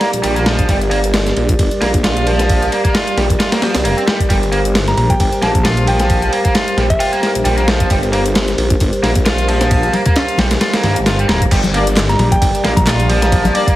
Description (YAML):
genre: breakbeat, breaks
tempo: 133 BPM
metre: 4/4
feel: swing 55% on 16ths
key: unclear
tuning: A4 = 445 Hz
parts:
  - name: dark analog pad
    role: sustained chords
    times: 0.0-13.8 s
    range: G3 to D5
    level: -20 LUFS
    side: equal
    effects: chorus, sidechain pumping
  - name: overdriven electric guitar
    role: riff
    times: 0.0-13.8 s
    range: F3 to F4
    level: -19 LUFS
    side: right 1 dB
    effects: tape echo
  - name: dusty soul sampler-style drum kit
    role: drums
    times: 0.0-13.8 s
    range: crash cymbal, kick drum, ride cymbal, snare drum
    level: -16 LUFS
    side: equal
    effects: overdrive, small room reverb
  - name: phased detuned saw bass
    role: bass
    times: 0.1-13.5 s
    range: D1 to G2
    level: -17 LUFS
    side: equal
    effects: phaser, tube saturation
  - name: house drum kit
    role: drums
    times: 0.1-13.8 s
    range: handclaps, hi-hat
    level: -28 LUFS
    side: left 3 dB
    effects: overdrive, small room reverb
  - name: soft synth bell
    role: melody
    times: 4.9-7.5, 12.1-12.9 s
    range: E5 to Bb5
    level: -22 LUFS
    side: equal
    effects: chorus, telephone sound, vintage 12-bit sampler grit, tape echo
  - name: congas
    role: percussion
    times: 9.9-13.5 s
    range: none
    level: -21 LUFS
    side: left 2 dB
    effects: none
  - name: clear brass ensemble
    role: stabs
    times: 11.7-13.7 s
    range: Bb3 to D5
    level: -20 LUFS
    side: left 3 dB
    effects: vintage 12-bit sampler grit, tape echo
room: moderate plate reverb, RT60 1.3 s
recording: heavily compressed radio sound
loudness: -12 LUFS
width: side -15 dB against mid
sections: 0.0-11.5 A section; 11.5-13.8 B section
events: drop 11.5-13.8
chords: 0.0 Gm